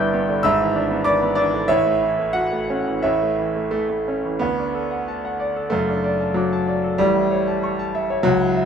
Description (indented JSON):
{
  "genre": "classical, virtuoso piano study",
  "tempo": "86-98 BPM",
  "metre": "2/4",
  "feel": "rubato",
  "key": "D major",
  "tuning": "A4 = 437 Hz",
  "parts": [
    { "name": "clear concert grand piano", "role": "solo", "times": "0.0-8.7 s", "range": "F#1 to G6", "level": "-18 LUFS", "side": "equal", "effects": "none" }
  ],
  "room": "light reverb",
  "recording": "minimal, uncompressed stereo recording",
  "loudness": "-18 LUFS",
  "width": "side -7 dB against mid",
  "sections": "0.0-4.4 A section; 4.4-8.7 B section",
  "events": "none",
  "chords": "0.4 E7/G#; 1.7 A; 4.4 D; 5.7 D/F#; 7.0 A",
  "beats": "| 0.44 1.06 | 1.70 2.36 | 3.05 3.74 | 4.42 5.08 | 5.72 6.36 | 7.00 7.62 | 8.25"
}